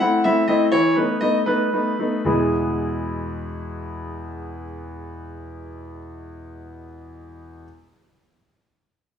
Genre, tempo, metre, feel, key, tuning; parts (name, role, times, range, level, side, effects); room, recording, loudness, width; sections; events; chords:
classical-period piano sonatina; 75-84 BPM (dotted quarters); 6/8; straight; E major; A4 = 438 Hz
bright concert grand piano; solo; 0.0-7.7 s; E2 to F#5; -21 LUFS; equal
moderate recital hall reverb, RT60 1.6 s; small room ambience; -19 LUFS; side -8 dB against mid
0.0-2.3 A section; 2.3-5.4 B section
slowing down 0.0-2.3
0.0 Am; 0.7 B7/E; 2.3 E